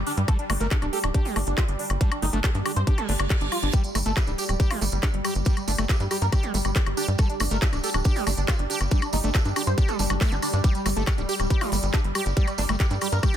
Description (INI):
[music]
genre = psychedelic trance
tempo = 139 BPM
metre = 4/4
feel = straight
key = unclear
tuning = A4 = 438 Hz
[part]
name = bubbling stepped-filter texture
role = sustained chords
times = 0.0-13.4 s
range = G3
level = -33 LUFS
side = right 2 dB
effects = chorus, built-in reverb, sidechain pumping
[part]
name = tight sequencer bass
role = bass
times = 0.0-13.2 s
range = D1 to G2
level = -26 LUFS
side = equal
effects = none
[part]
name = wide unison lead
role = melody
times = 0.1-13.4 s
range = G3 to C5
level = -31 LUFS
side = equal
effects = phaser, sidechain pumping, ping-pong delay
[part]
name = techno drum kit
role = drums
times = 0.1-13.4 s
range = handclaps, hi-hat, woodblock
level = -30 LUFS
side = left 3 dB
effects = none
[part]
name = overdriven acid bass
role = riff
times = 0.3-13.4 s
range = G3 to G4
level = -33 LUFS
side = moving between left 2 dB and right 5 dB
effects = distortion, auto-pan, sidechain pumping, dub echo
[part]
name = electronic kick drum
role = drums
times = 0.3-13.3 s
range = none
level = -22 LUFS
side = equal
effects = none
[part]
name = reverse cymbal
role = sound effects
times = 3.0-3.7 s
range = none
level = -34 LUFS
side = right 5 dB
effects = none
[part]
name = tambourine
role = percussion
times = 3.7-13.4 s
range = none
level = -36 LUFS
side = right 6 dB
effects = none
[sound]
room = digital ambience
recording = dense, heavily limited modern master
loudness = -22 LUFS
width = side -10 dB against mid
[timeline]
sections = 0.0-13.4 A section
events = reverse cymbal 3.0-3.7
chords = 0.0 G5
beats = | 0.28 0.71 1.15 1.58 | 2.01 2.44 2.87 3.30 | 3.73 4.17 4.60 5.03 | 5.46 5.89 6.32 6.76 | 7.19 7.62 8.05 8.48 | 8.91 9.35 9.78 10.21 | 10.64 11.07 11.50 11.94 | 12.37 12.80 13.23